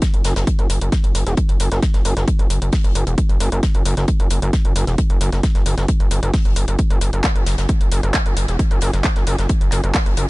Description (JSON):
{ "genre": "driving peak-time techno", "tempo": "133 BPM", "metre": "4/4", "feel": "straight", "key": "unclear", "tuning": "A4 = 443 Hz", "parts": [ { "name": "damped 70s drum kit", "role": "drums", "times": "0.0-10.3 s", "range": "hi-hat, snare drum", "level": "-33 LUFS", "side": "left 4 dB", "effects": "sidechain pumping on hats, high-pass filter on hats, high-pass filter on snare, high-pass filter on room" }, { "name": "electronic kick drum", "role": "drums", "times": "0.0-10.0 s", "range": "none", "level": "-17 LUFS", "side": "equal", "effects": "overdrive" }, { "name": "punchy analog drum machine", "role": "drums", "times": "0.0-10.3 s", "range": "handclaps, hi-hat", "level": "-26 LUFS", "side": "left 1 dB", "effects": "sidechain pumping on hats" }, { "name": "gritty driven synth bass", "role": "bass", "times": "0.1-10.3 s", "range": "E1 to F#1", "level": "-19 LUFS", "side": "equal", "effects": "sidechain pumping" } ], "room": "studio ambience", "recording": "nothing above 10.9 kHz", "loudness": "-15 LUFS", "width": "side -22 dB against mid", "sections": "0.0-10.3 A section", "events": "none", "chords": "none", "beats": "0.02 0.47 0.92 | 1.37 1.82 2.28 2.73 | 3.18 3.63 4.08 4.53 | 4.98 5.43 5.88 6.34 | 6.79 7.24 7.69 8.14 | 8.59 9.04 9.49 9.95" }